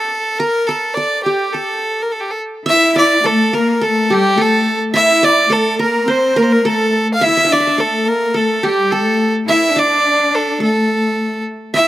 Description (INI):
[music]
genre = Arabic maqam ensemble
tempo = 106 BPM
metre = 4/4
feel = straight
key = A maqam kurd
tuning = A4 = 440 Hz
[part]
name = clear violin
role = melody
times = 0.0-11.9 s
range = G4 to F5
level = -14 LUFS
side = equal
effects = slapback echo
[part]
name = qanun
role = second line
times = 0.0-11.9 s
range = G4 to E5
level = -20 LUFS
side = right 1 dB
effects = slapback echo
[part]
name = rich studio cello section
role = second line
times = 2.7-11.9 s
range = G3 to E4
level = -18 LUFS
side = left 1 dB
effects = none
[sound]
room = light reverb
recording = recorded outdoors, with no room sound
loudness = -12 LUFS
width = side -14 dB against mid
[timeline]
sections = 0.0-2.7 A section; 2.7-11.9 B section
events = none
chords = none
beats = | 0.39 0.96 1.53 2.10 | 2.67 3.23 3.80 4.37 | 4.93 5.50 6.07 6.63 | 7.20 7.77 8.34 8.90 | 9.47 10.04 10.60 11.17 | 11.74